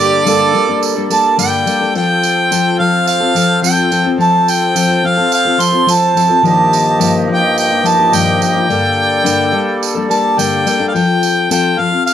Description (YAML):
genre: acoustic folk duo or small band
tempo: 107 BPM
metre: 4/4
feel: straight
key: F mixolydian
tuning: A4 = 441 Hz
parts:
  - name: warm harmonica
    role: melody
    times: 0.0-12.1 s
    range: D5 to C6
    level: -13 LUFS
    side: right 1 dB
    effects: cassette tape
  - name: warm cello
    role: second line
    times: 0.0-0.9 s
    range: G4 to A4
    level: -18 LUFS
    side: right 11 dB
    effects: cassette tape
  - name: picked steel-string acoustic guitar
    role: accompaniment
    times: 0.0-12.1 s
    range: G2 to A4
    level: -16 LUFS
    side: left 5 dB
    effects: cassette tape
  - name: accordion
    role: sustained chords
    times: 0.0-10.9 s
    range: G2 to Eb5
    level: -20 LUFS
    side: right 2 dB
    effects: cassette tape
  - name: tambourine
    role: percussion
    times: 0.3-12.1 s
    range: none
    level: -22 LUFS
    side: right 13 dB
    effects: none
room: light reverb, studio ambience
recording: home recording on cassette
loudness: -10 LUFS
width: side -10 dB against mid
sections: 0.0-10.9 A section; 10.9-12.1 A section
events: none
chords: 0.0 Gmadd9; 2.0 F; 6.4 Ebadd9/G; 8.7 Gmadd9; 10.9 F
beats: 0.27 0.83 1.39 | 1.95 2.51 3.08 3.64 | 4.20 4.76 5.32 5.89 | 6.45 7.01 7.57 8.14 | 8.70 9.26 9.82 10.39 | 10.95 11.51 12.07